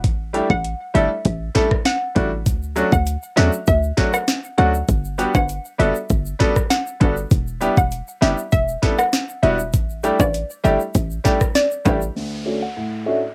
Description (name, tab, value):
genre	dancehall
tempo	99 BPM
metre	4/4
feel	straight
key	unclear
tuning	A4 = 437 Hz
part	short 808-style bass	bass	0.0-12.1 s	E1 to E2	-23 LUFS	equal	none
part	island pop drum kit	drums	0.0-12.0 s	hi-hat, kick drum, rim click, snare drum	-22 LUFS	equal	overdrive, cassette tape
part	bright grand piano	accompaniment	0.3-13.2 s	D2 to A4	-23 LUFS	equal	low-pass filter, cassette tape
part	hollow square pluck	melody	0.5-13.3 s	D5 to F#5	-25 LUFS	equal	chorus, low-pass filter, cassette tape
part	egg shaker and timbales	percussion	2.5-12.1 s	none	-30 LUFS	equal	none
part	downlifter	sound effects	12.2-13.3 s	none	-38 LUFS	equal	none
room	little or no reverb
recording	home recording on cassette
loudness	-20 LUFS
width	mono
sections	0.0-12.2 A section; 12.2-13.3 B section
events	filter sweep 12.2-13.3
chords	0.0 A7sus4; 2.5 Dmaj7; 4.9 Gmaj7; 7.3 Em7; 9.7 A7sus4; 12.2 Dmaj7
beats	| 0.04 0.65 1.25 1.86 | 2.46 3.07 3.67 4.28 | 4.89 5.49 6.10 6.71 | 7.31 7.92 8.52 9.13 | 9.74 10.34 10.95 11.55 | 12.16 12.77